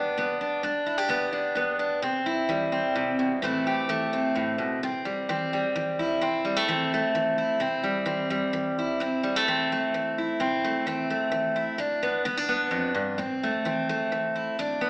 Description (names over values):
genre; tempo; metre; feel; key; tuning
country; 129 BPM; 3/4; straight; A minor; A4 = 440 Hz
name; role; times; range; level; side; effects
picked steel-string acoustic guitar; solo; 0.0-14.9 s; F2 to G4; -24 LUFS; equal; none
room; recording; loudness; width
wet recital hall reverb, RT60 1.5 s; recorded in a church or concert hall, AM radio sound; -24 LUFS; side -27 dB against mid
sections
0.0-4.8 A section; 4.8-14.9 B section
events
none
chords
0.0 G; 2.0 C; 3.4 Am; 4.8 C; 6.2 Am; 7.6 C; 9.0 Am; 11.8 G; 13.2 Am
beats
0.18 | 0.65 1.11 1.58 | 2.04 2.51 2.97 | 3.44 3.90 4.37 | 4.83 5.29 5.76 | 6.22 6.69 7.15 | 7.62 8.08 8.54 | 9.01 9.47 9.94 | 10.40 10.87 11.33 | 11.79 12.26 12.72 | 13.19 13.65 14.12 | 14.58